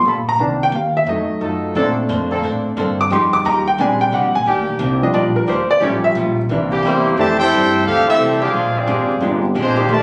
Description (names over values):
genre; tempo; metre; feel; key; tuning
jazz, big band swing; 177 BPM; 4/4; swing 64% on 8ths; unclear; A4 = 438 Hz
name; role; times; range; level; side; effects
clear concert grand piano; accompaniment; 0.0-9.4 s; Eb3 to D6; -20 LUFS; equal; none
upright bass; bass; 0.0-10.0 s; G1 to Bb2; -25 LUFS; equal; none
warm trombone section; sustained chords; 0.1-10.0 s; D3 to A4; -26 LUFS; equal; none
archtop guitar, miked and amplified; accompaniment; 1.8-10.0 s; F2 to C5; -28 LUFS; equal; none
clear trumpet section; melody; 6.8-10.0 s; Ab3 to A5; -19 LUFS; equal; none
warm trombone section; second line; 6.8-10.0 s; C3 to G4; -24 LUFS; equal; none
room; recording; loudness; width
moderate large studio reverb, RT60 1.3 s; recorded on a phone in the room, club reverb; -17 LUFS; mono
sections
0.0-7.2 A section; 7.2-10.0 B section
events
grand piano solo 0.0-7.2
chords
0.4 Cm9; 1.1 F7b9; 1.8 Bbmaj9; 3.1 Fm9; 3.8 Bb13; 4.5 Ebmaj7; 5.8 A7b13; 6.5 C7; 7.2 Fmaj13; 8.5 Bb13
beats
0.06 | 0.40 0.73 1.07 1.41 | 1.75 2.09 2.43 2.77 | 3.11 3.45 3.79 4.12 | 4.46 4.80 5.14 5.48 | 5.82 6.16 6.50 6.84 | 7.18 7.52 7.86 8.20 | 8.53 8.87 9.21 9.55 | 9.89